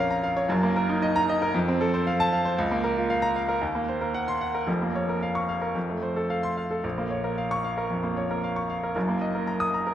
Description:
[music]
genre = classical, virtuoso piano study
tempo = 114 BPM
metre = 4/4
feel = rubato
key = Bb minor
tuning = A4 = 440 Hz
[part]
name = clear baby grand piano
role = solo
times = 0.0-9.9 s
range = F1 to Eb6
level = -24 LUFS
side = equal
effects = none
[sound]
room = wet concert hall reverb, RT60 1.9 s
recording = recorded in a church or concert hall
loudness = -24 LUFS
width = side -11 dB against mid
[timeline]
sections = 0.0-9.9 A section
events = none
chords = 0.5 Ebm/Gb; 1.5 F; 2.6 Bbm/Db; 3.6 Cm7b5/Eb; 4.7 Bbm/F; 5.8 F; 6.8 Bbm; 9.0 Ebm/Gb

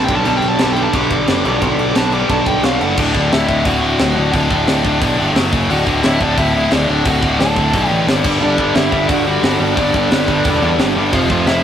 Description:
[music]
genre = punk rock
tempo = 177 BPM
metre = 4/4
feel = straight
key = D major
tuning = A4 = 440 Hz
[part]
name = bluesy overdriven lead guitar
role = melody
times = 0.0-11.6 s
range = D4 to D6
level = -20 LUFS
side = right 1 dB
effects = distortion
[part]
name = heavy high-gain guitar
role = riff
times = 0.0-11.6 s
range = D2 to G3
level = -20 LUFS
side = equal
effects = distortion
[part]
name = overdriven semi-hollow guitar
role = riff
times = 0.0-3.0, 8.4-11.6 s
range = F2 to G3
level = -21 LUFS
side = right 6 dB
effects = none
[part]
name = tight distorted guitar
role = riff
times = 0.0-11.6 s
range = D2 to G3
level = -19 LUFS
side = left 4 dB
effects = distortion
[part]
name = overdriven picked electric bass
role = bass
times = 0.0-11.6 s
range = D1 to E2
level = -19 LUFS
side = right 1 dB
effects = none
[part]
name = tight metal drum kit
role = drums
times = 0.1-11.6 s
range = crash cymbal, hi-hat, kick drum, snare drum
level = -20 LUFS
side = equal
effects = none
[sound]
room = moderate stone room reverb, RT60 1.1 s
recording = rough rehearsal-room recording, tube saturation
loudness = -12 LUFS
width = side -9 dB against mid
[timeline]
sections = 0.0-3.0 A section; 3.0-11.6 B section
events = lead electric guitar solo 0.0-3.0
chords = 0.1 G; 3.0 D; 5.4 F#5; 5.7 D; 8.1 G5; 11.1 F5

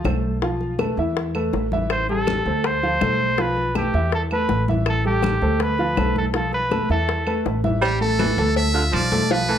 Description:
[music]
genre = latin, salsa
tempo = 162 BPM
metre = 4/4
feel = straight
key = A minor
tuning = A4 = 440 Hz
[part]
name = clear concert grand piano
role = accompaniment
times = 0.0-9.6 s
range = E3 to F6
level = -24 LUFS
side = equal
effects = none
[part]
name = upright bass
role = bass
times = 0.0-9.6 s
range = A1 to E2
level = -24 LUFS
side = equal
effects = none
[part]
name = congas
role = percussion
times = 0.0-9.6 s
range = none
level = -30 LUFS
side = left 2 dB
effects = none
[part]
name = bongos and cowbell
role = percussion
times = 0.1-9.5 s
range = none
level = -29 LUFS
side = left 6 dB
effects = none
[part]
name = claves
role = percussion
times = 0.1-9.1 s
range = none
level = -36 LUFS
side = right 6 dB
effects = none
[part]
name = clear trumpet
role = melody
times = 1.9-7.4 s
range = G4 to C5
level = -23 LUFS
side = right 1 dB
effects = none
[part]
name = trumpet with metal mute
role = melody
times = 7.8-9.6 s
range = G4 to E5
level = -23 LUFS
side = equal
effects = none
[part]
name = clear baritone saxophone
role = second line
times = 7.8-9.6 s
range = D3 to G3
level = -25 LUFS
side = right 4 dB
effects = none
[sound]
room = moderate large studio reverb, RT60 0.9 s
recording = dark, warm production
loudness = -18 LUFS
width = side -9 dB against mid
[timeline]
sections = 0.0-7.8 A section; 7.8-9.6 B section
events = none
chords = 0.4 Fmaj7#11/B; 1.2 Esus4; 1.9 Am7; 2.6 Dm7; 3.4 G13/B; 4.1 Esus4; 4.9 Am7; 5.6 Dm7; 6.3 Fmaj7#11/B; 7.1 Esus4; 7.8 A5; 8.6 Dm

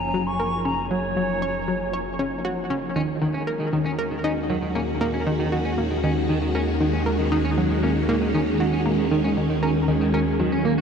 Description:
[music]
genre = ambient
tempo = 117 BPM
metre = 4/4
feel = straight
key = unclear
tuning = A4 = 438 Hz
[part]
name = silver concert flute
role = melody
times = 0.0-2.4 s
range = C#5 to C#6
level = -30 LUFS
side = right 1 dB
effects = analog delay
[part]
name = phased string machine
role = sustained chords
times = 0.0-10.8 s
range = D#3 to G#4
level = -25 LUFS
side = right 1 dB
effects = ensemble chorus, phaser
[part]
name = analog pluck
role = riff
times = 0.0-10.8 s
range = D#3 to C#5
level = -25 LUFS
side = equal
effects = chorus, analog delay
[part]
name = analog drone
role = bass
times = 0.0-10.8 s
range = F#1 to D#2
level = -30 LUFS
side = equal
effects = chorus, tube saturation
[part]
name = electric guitar at the edge of break-up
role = arpeggios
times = 3.0-10.8 s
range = D#3 to C#4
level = -30 LUFS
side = right 1 dB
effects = auto-pan, analog delay
[sound]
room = wet huge ambient reverb, RT60 8.6 s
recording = dark, warm production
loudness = -21 LUFS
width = side -6 dB against mid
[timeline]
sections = 0.0-10.8 A section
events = fade-in on string machine 0.0-10.8; fade-in on synth drone 0.0-10.8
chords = 0.0 F#; 3.0 D#m7

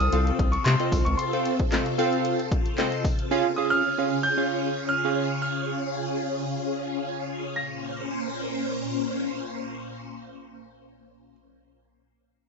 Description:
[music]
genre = dance-pop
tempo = 113 BPM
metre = 4/4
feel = straight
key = unclear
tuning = A4 = 439 Hz
[part]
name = bright concert grand piano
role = melody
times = 0.0-11.3 s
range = C6 to Bb6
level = -28 LUFS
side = right 1 dB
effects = dub echo
[part]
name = phased string machine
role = sustained chords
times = 0.0-11.3 s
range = Bb2 to C5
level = -29 LUFS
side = left 1 dB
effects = ensemble chorus, phaser, sidechain pumping
[part]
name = round analog bass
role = bass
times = 0.0-1.2 s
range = C2 to C3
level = -23 LUFS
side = left 1 dB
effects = sidechain pumping
[part]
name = punchy analog drum machine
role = drums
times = 0.0-3.3 s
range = handclaps, hi-hat, kick drum, snare drum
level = -26 LUFS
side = left 1 dB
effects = none
[part]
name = warm analog keys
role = accompaniment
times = 0.1-5.3 s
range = C4 to F5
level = -26 LUFS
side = right 3 dB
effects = chorus
[sound]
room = moderate studio ambience, RT60 0.5 s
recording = rough home demo mix, nothing above 7.6 kHz, faint mains hum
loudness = -24 LUFS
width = side -4 dB against mid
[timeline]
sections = 0.0-7.6 A section; 7.6-11.8 B section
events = none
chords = 0.0 F/C; 3.3 Db; 7.6 Bbmadd9

